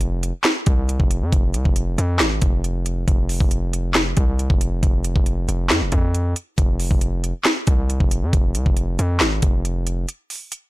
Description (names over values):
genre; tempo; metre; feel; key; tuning
hip hop, trap; 137 BPM; 4/4; half-time; F minor; A4 = 440 Hz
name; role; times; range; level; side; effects
distorted 808-style bass; bass; 0.0-10.1 s; F1 to F2; -21 LUFS; equal; distortion
trap drum kit; drums; 0.0-10.6 s; handclaps, hi-hat, kick drum, snare drum; -18 LUFS; equal; none
room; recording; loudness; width
little or no reverb; blown-out, overdriven recording, overdrive; -18 LUFS; side -19 dB against mid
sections
0.0-10.7 A section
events
break 10.1-10.7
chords
none